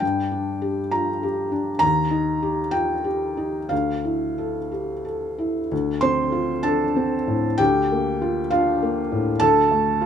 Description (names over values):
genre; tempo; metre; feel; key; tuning
neoclassical minimalist piano; 58-68 BPM (dotted quarters); 6/8; rubato; D minor; A4 = 440 Hz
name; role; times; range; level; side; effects
felt-muted upright piano; solo; 0.0-10.1 s; D2 to C6; -20 LUFS; equal; none
room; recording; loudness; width
light reverb; minimal, uncompressed stereo recording; -20 LUFS; side -8 dB against mid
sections
0.0-5.7 A section; 5.7-10.1 B section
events
none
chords
0.0 Gm; 1.8 Eb; 3.7 Dmadd9; 5.7 Dm7; 7.6 Bbmaj7/D; 9.4 D5